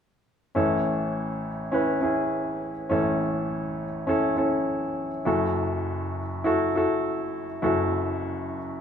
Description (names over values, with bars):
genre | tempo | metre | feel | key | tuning
pop | 102 BPM | 4/4 | straight | unclear | A4 = 435 Hz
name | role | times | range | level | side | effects
clear baby grand piano | accompaniment | 0.5-8.8 s | F#1 to B4 | -24 LUFS | equal | none
room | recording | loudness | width
wet large studio reverb, RT60 1.1 s | band playing live in one room | -24 LUFS | side -8 dB against mid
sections
0.5-8.8 A section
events
none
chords
0.5 A; 5.3 F#m7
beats
| 0.54 1.13 1.72 2.31 | 2.90 3.49 4.08 4.67 | 5.26 5.85 6.44 7.04 | 7.62 8.21 8.80